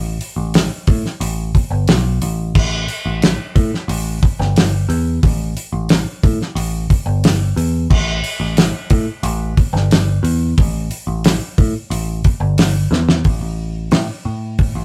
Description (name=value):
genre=psychedelic rock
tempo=90 BPM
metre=4/4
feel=straight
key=unclear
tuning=A4 = 440 Hz
part: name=picked electric bass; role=bass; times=0.0-14.8 s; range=G1 to A2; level=-21 LUFS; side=equal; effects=none
part: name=damped 70s drum kit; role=drums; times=0.2-14.7 s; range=crash cymbal, hi-hat, kick drum, snare drum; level=-18 LUFS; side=equal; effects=none
room=moderate studio reverb, RT60 0.6 s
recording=rough rehearsal-room recording, warm saturation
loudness=-17 LUFS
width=mono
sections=0.0-13.2 A section; 13.2-14.8 B section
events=drum fill 12.9-13.2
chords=none